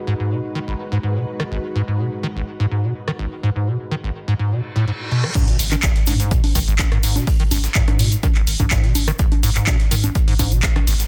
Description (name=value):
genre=acid house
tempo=125 BPM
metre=4/4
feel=straight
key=G# minor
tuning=A4 = 440 Hz
part: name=string machine, full ensemble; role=sustained chords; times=0.0-5.3 s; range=G#3 to B4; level=-33 LUFS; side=equal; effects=phaser, ensemble chorus, sidechain pumping
part: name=acid bass, square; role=riff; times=0.1-10.9 s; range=G#1 to F#3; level=-24 LUFS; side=equal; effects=subtle chorus, sidechain pumping, analog delay
part: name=punchy analog drum machine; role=drums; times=1.4-11.1 s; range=congas, crash cymbal, handclaps, hi-hat, rim click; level=-26 LUFS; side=equal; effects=none
part: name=reverse cymbal and impact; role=sound effects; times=4.6-7.3 s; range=none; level=-32 LUFS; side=equal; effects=none
part: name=breakbeat sampler-style drum kit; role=drums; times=5.4-11.1 s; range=hi-hat, snare drum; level=-36 LUFS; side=equal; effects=none
part: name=electronic kick drum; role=drums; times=5.4-10.7 s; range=none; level=-20 LUFS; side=equal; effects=none
part: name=egg shaker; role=percussion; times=5.4-11.1 s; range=none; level=-32 LUFS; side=equal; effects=none
part: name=saturated sub bass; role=bass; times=5.6-11.0 s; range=G#1 to G#2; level=-24 LUFS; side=equal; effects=tube saturation, sidechain pumping
room=digital ambience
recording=dense, heavily limited modern master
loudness=-19 LUFS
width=mono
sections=0.0-5.4 A section; 5.4-11.1 B section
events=filter sweep on string machine 0.0-5.4; reverse cymbal 4.6-5.4; drop 5.4-11.1; impact 5.4-7.3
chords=0.0 G#m7; 5.4 G#m